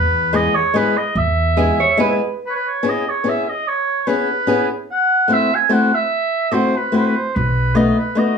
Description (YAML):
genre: musette waltz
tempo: 146 BPM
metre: 3/4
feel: straight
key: E major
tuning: A4 = 440 Hz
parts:
  - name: warm oboe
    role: melody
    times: 0.0-8.4 s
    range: B4 to G#5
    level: -18 LUFS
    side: right 2 dB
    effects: none
  - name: upright bass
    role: bass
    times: 0.0-1.7, 7.4-7.9 s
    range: B1 to E2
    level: -20 LUFS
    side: equal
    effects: none
  - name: picked swing-style acoustic guitar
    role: accompaniment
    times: 0.3-8.4 s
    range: G#3 to G#4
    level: -18 LUFS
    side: left 3 dB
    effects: none
  - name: vintage hollow-body jazz guitar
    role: second line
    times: 1.6-2.4 s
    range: G#4 to C#5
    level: -17 LUFS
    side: right 4 dB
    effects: none
room: moderate small room reverb, RT60 0.5 s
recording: small room reverb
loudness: -15 LUFS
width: side -6 dB against mid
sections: 0.0-2.4 A section; 2.4-8.4 A section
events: none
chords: 0.0 E; 2.4 E6; 4.9 Am6; 7.4 B7